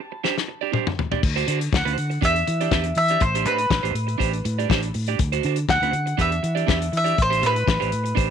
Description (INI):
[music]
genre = disco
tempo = 121 BPM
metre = 4/4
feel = straight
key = A minor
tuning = A4 = 440 Hz
[part]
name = bowl-back mandolin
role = melody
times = 0.0-8.3 s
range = B4 to A5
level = -23 LUFS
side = equal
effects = tape echo
[part]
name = electric guitar at the edge of break-up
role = accompaniment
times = 0.0-8.3 s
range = D4 to D5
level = -26 LUFS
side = right 17 dB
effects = none
[part]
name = warm soul drum kit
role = drums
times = 0.2-8.3 s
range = crash cymbal, hi-hat, kick drum, snare drum, toms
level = -24 LUFS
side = left 4 dB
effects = none
[part]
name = fingered electric bass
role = bass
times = 1.2-8.3 s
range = A1 to E3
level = -25 LUFS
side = equal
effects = none
[sound]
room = small room reverb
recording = 1960s-style stereo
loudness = -19 LUFS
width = side -8 dB against mid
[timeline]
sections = 0.0-1.2 A section; 1.2-8.3 B section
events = break 0.0-1.2; drum fill 0.2-1.2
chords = 0.0 Am7 (rootless); 1.2 D7; 2.2 Em7; 3.2 Am11; 5.2 D7; 6.2 Em7; 7.2 Am11